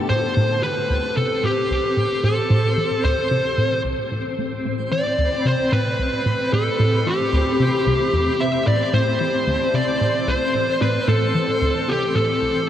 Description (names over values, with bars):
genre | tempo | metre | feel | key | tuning
ambient, sequencer-driven space music | 112 BPM | 4/4 | straight | A minor | A4 = 440 Hz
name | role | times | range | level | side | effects
phased analog pad | sustained chords | 0.0-12.7 s | E3 to A4 | -32 LUFS | left 1 dB | phaser, chorus
twinkling granular texture | texture | 0.0-12.7 s | C4 to C7 | -26 LUFS | left 1 dB | built-in reverb
fuzz lead guitar | melody | 0.1-12.7 s | G4 to E5 | -21 LUFS | equal | distortion, tape echo
tight sequenced synth | riff | 0.1-12.5 s | C2 to E3 | -22 LUFS | equal | chorus, tape echo
room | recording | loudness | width
wet huge ambient reverb, RT60 8.2 s | in a vast, echoing space, cassette tape | -18 LUFS | side -10 dB against mid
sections
0.1-12.7 A section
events
fade-in on analog synth pad 0.1-12.7; filter sweep on synth arpeggio sound 0.1-12.7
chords
0.1 Am7